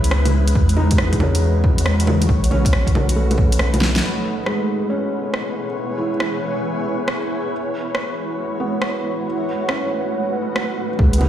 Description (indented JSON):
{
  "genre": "future garage",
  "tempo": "138 BPM",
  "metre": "4/4",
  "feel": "swing 66% on 16ths",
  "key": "C# minor",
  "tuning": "A4 = 440 Hz",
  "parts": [
    { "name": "felt-muted upright piano", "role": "accompaniment", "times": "0.0-11.3 s", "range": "G#3 to G#4", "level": "-26 LUFS", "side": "right 1 dB", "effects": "sidechain pumping, analog delay" },
    { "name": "granular cloud pad", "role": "sustained chords", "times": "0.0-11.3 s", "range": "E3 to C#5", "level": "-23 LUFS", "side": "equal", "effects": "built-in reverb, vintage 12-bit sampler grit, sidechain pumping" },
    { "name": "soft dub sub bass", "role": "bass", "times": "0.0-4.0, 11.0-11.3 s", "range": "B1 to E2", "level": "-18 LUFS", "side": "equal", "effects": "sidechain pumping" },
    { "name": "deep house drum kit", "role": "drums", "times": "0.0-11.3 s", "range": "bongos, hi-hat, rim click, snare drum", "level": "-23 LUFS", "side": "right 1 dB", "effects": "overdrive" },
    { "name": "wind-like tuned noise texture", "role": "texture", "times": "0.0-11.3 s", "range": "G#3 to B4", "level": "-30 LUFS", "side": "left 2 dB", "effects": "built-in reverb" },
    { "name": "electronic kick drum", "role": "drums", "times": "0.6-3.5, 11.0-11.1 s", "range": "none", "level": "-18 LUFS", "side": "equal", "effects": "overdrive" }
  ],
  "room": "moderate lush hall reverb, RT60 1.6 s",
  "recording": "played on a big sound system in a bare room, large studio reverb",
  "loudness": "-17 LUFS",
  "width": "side -11 dB against mid",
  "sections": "0.0-4.0 A section; 4.0-11.0 B section",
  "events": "drum fill 3.8",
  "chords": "0.0 C#m7; 0.6 E69; 2.3 B7; 4.0 C#m7; 7.5 E69; 9.2 B7"
}